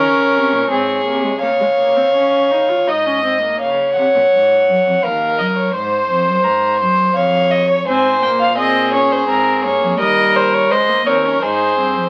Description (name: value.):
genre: classical, baroque-style fugue for string quartet.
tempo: 84 BPM.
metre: 3/4.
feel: straight.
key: Db major.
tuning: A4 = 441 Hz.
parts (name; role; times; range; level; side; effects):
rich violin; melody; 0.0-12.1 s; Bb4 to Ab5; -20 LUFS; equal; none.
warm violin; second line; 0.0-12.1 s; Ab4 to Eb5; -18 LUFS; equal; none.
warm viola; accompaniment; 0.0-3.6, 7.9-12.1 s; G3 to F4; -23 LUFS; equal; none.
rich cello; bass; 0.0-12.1 s; Db2 to Db3; -28 LUFS; equal; none.
room: wet studio reverb, RT60 0.5 s.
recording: very old 78 rpm record, vinyl crackle, nothing above 11.0 kHz.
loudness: -15 LUFS.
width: mono.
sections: 0.0-3.6 A section; 3.6-12.1 B section.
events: none.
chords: 0.0 Gb (rootless); 1.4 Absus4/Db (rootless); 2.9 Ab; 3.6 Db; 5.0 Ebm7; 5.7 Ab7; 7.2 Db/F; 7.9 Ab; 9.3 Bbm7/Ab; 10.0 Eb7; 11.4 Ab.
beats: 0.70 | 1.42 2.15 2.88 | 3.61 4.33 5.04 | 5.74 6.45 7.16 | 7.87 8.57 9.28 | 9.99 10.71 11.43.